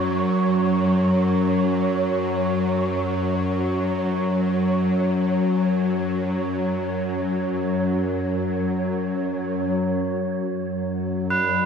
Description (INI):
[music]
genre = dark ambient drone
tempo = free time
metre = none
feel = none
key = unclear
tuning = A4 = 440 Hz
[part]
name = tubular bells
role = arpeggios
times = 0.0-11.7 s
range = A#4 to B4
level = -24 LUFS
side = right 4 dB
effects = none
[part]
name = bowed-like drone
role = drone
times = 0.0-11.7 s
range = F#2 to F#3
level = -21 LUFS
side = left 1 dB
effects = built-in reverb
[part]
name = wind-like tuned noise texture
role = texture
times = 0.0-9.8 s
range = C#5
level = -30 LUFS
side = right 3 dB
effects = built-in reverb, lush chorus
[sound]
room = wet lush hall reverb, RT60 2.9 s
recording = dreamy mix soaked in reverb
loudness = -20 LUFS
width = side -6 dB against mid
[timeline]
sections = 0.0-9.8 A section; 9.8-11.7 B section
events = none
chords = 0.0 F#5; 9.8 F#sus4